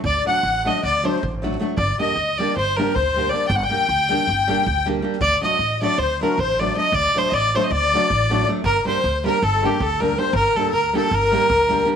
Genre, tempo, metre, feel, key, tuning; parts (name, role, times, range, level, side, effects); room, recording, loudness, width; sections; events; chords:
balkan folk, Balkan wedding band; 316 BPM (eighths); 9/8; straight; G harmonic minor; A4 = 440 Hz
upright bass; bass; 0.0-11.8 s; G1 to D2; -26 LUFS; right 1 dB
soft-mallet drum kit; percussion; 0.0-11.9 s; kick drum, snare drum; -33 LUFS; right 3 dB
clear fiddle; melody; 0.1-11.9 s; G4 to G5; -20 LUFS; right 2 dB
musette accordion; second line; 0.1-11.9 s; G4 to G5; -23 LUFS; left 10 dB
flamenco guitar; accompaniment; 0.2-12.0 s; F#3 to G4; -25 LUFS; right 1 dB
light reverb, small room ambience; 1960s-style stereo; -17 LUFS; side -7 dB against mid
0.0-5.2 A section; 5.2-12.0 A section
0.0 D; 1.8 Gm; 5.2 D; 8.6 Gm